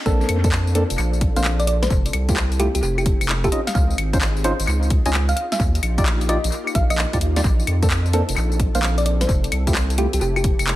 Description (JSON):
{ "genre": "UK garage, two-step garage", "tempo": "130 BPM", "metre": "4/4", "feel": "swing 66% on 16ths", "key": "Bb major", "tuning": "A4 = 440 Hz", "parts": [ { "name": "soft string machine", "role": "sustained chords", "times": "0.1-10.8 s", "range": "Bb3 to A4", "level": "-31 LUFS", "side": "equal", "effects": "ensemble chorus, sidechain pumping" }, { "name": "percussive organ stab", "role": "stabs", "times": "0.1-10.1 s", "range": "A3 to Eb5", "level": "-26 LUFS", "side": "equal", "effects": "chorus, dub echo" }, { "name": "saturated sub bass", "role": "bass", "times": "0.1-10.8 s", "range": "F1 to F2", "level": "-21 LUFS", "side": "equal", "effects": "none" }, { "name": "electronic kick drum", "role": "drums", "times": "0.1-10.6 s", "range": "none", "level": "-20 LUFS", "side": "equal", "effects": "overdrive, small room reverb" }, { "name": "house drum kit", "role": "drums", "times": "0.1-10.8 s", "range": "claves, handclaps, hi-hat, snare drum, tambourine", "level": "-25 LUFS", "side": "left 2 dB", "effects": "overdrive, small room reverb, analog delay" }, { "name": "thumb-piano-like synth pluck", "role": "melody", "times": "1.4-10.4 s", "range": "G4 to Ab5", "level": "-27 LUFS", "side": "equal", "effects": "chorus, analog delay" } ], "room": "light reverb", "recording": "echo-heavy mix", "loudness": "-17 LUFS", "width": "side -15 dB against mid", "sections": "0.1-10.8 A section", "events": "drop 0.1-10.8", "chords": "0.1 Bbmaj9; 1.9 Fmaj9; 3.5 Dbmaj9; 5.4 Ebmaj9; 7.4 Bbmaj9; 9.3 Fmaj9" }